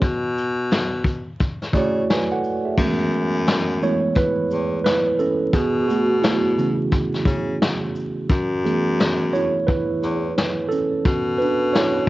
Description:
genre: lo-fi hip hop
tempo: 87 BPM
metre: 4/4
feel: swing 61% on 16ths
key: F# minor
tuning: A4 = 440 Hz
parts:
  - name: mellow tine electric piano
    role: accompaniment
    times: 0.0-12.1 s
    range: C#3 to G#5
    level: -21 LUFS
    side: right 2 dB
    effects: medium stereo tremolo, cassette tape, low-pass filter
  - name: mellow baritone saxophone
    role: bass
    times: 0.0-12.1 s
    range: E2 to C#3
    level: -23 LUFS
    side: left 2 dB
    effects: none
  - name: vintage brush drum kit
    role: drums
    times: 0.0-11.9 s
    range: crash cymbal, hi-hat, kick drum, shaker, snare drum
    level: -22 LUFS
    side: left 1 dB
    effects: cassette tape
room: moderate spring reverb, RT60 1.5 s, small room ambience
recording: home recording on cassette, vinyl crackle, nothing above 7.6 kHz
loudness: -18 LUFS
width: side -17 dB against mid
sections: 0.0-2.8 A section; 2.8-12.1 B section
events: filter sweep on tine electric piano 0.0-2.8; tine electric piano solo 2.8-12.1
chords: 0.0 Bm11; 2.8 F#m11; 5.5 B9sus4; 8.3 F#m11; 11.1 Bm11

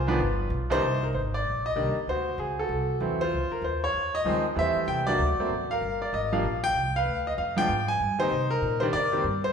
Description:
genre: jazz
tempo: 192 BPM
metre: 4/4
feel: swing 62% on 8ths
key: C minor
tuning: A4 = 439 Hz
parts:
  - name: clear grand piano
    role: melody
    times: 0.0-9.5 s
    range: C2 to Ab5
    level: -25 LUFS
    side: equal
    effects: none
  - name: upright bass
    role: bass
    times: 0.0-9.5 s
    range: G1 to C3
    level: -31 LUFS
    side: equal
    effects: none
room: wet recital hall reverb, RT60 1.5 s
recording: recorded in a church or concert hall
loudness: -24 LUFS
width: side -6 dB against mid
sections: 0.8-9.5 A section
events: none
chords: 0.2 G7b13; 0.8 Cm9; 2.1 D9; 3.3 Dbmaj9; 4.6 Am7; 5.2 D(b13); 5.8 Gm7; 7.1 G7b9; 8.3 Cm9

